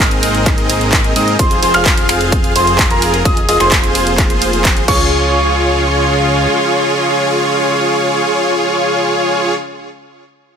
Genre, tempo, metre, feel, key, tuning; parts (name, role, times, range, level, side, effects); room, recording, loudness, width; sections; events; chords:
EDM, festival progressive house; 129 BPM; 4/4; straight; Db major; A4 = 443 Hz
bright chamber string section; sustained chords; 0.0-9.5 s; Db3 to Ab4; -20 LUFS; right 1 dB; stereo widening, sidechain pumping
bright concert grand piano; arpeggios; 0.0-9.5 s; Bb5 to F6; -18 LUFS; right 1 dB; sidechain pumping, digital delay
dense compressed supersaw; riff; 0.0-9.5 s; C4 to F5; -14 LUFS; equal; sidechain pumping, digital delay
fat analog bass; bass; 0.0-6.5 s; F1 to Ab2; -19 LUFS; equal; sidechain pumping
big-room dance drum kit; drums; 0.0-5.0 s; crash cymbal, finger snaps, handclaps, hi-hat, ride cymbal; -17 LUFS; equal
electronic kick drum; drums; 0.0-5.0 s; -15 LUFS; equal
light reverb; -11 LUFS; side -7 dB against mid
0.0-5.1 A section; 5.1-8.8 B section
drop 0.0-5.1
0.0 Abadd9; 1.4 Fm; 4.9 Db